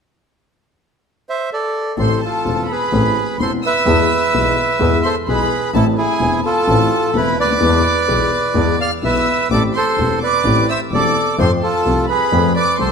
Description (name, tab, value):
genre	tango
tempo	128 BPM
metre	4/4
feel	rubato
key	A harmonic minor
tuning	A4 = 439 Hz
part	bandoneon	melody	1.3-12.9 s	E4 to F5	-18 LUFS	right 3 dB	none
part	warm studio violin section	second line	2.0-12.9 s	G#5 to F6	-21 LUFS	equal	none
part	dark concert grand piano	accompaniment	2.0-12.9 s	E1 to A4	-19 LUFS	left 4 dB	none
part	clear double bass	bass	2.0-12.9 s	E1 to F2	-21 LUFS	right 1 dB	none
room	moderate concert hall reverb, RT60 2.1 s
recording	minimal, uncompressed stereo recording, lossy compression artefacts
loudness	-14 LUFS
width	side -6 dB against mid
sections	0.1-2.0 A section; 2.0-12.9 B section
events	none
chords	0.1 N.C.; 2.0 Am; 3.9 E; 5.7 Am; 7.6 E; 9.5 Am7; 11.4 F